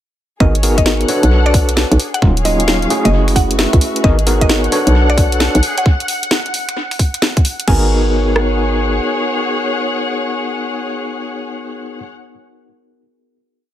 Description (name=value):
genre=UK garage, two-step garage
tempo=132 BPM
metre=4/4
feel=swing 65% on 16ths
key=G# minor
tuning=A4 = 439 Hz
part: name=mallet-like synth pluck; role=melody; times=0.4-12.0 s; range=D5 to G#5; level=-23 LUFS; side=equal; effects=chorus, analog delay
part: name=overdriven tine electric piano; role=stabs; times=0.4-12.0 s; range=F#3 to C#5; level=-19 LUFS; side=equal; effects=fast tremolo, low-pass filter, analog delay
part: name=hollow knocking FM bass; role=bass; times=0.4-9.0 s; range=D#1 to C#2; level=-14 LUFS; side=equal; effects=sidechain pumping
part: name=garage drum kit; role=drums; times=0.4-8.5 s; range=kick drum, rim click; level=-13 LUFS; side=equal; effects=none
part: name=muted studio string section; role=texture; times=0.4-12.1 s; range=D4 to F#5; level=-22 LUFS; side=left 2 dB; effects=sidechain pumping
part: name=garage drum kit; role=drums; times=0.6-7.8 s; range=crash cymbal, finger snaps, hi-hat, snare drum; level=-19 LUFS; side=equal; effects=analog delay
part: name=soft string machine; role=sustained chords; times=4.0-7.7 s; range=F#5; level=-24 LUFS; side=equal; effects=ensemble chorus, sidechain pumping
room=light reverb, digital ambience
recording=echo-heavy mix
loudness=-12 LUFS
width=side -12 dB against mid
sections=0.4-7.7 groove; 7.7-11.3 final chord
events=filter sweep on tine electric piano 0.4-5.9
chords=0.4 G#m9; 1.1 Bm9; 2.0 D#m9; 3.1 F#m9; 4.0 G#m9; 4.7 Bm9; 5.6 G#7(no3); 6.8 N.C.; 7.7 G#m9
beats=| 0.40 0.86 1.31 1.77 | 2.22 2.68 3.13 3.59 | 4.04 4.50 4.95 5.40 | 5.86 6.31 6.77 7.22 | 7.68 8.13 8.59 9.04 | 9.49 9.95 10.40 10.86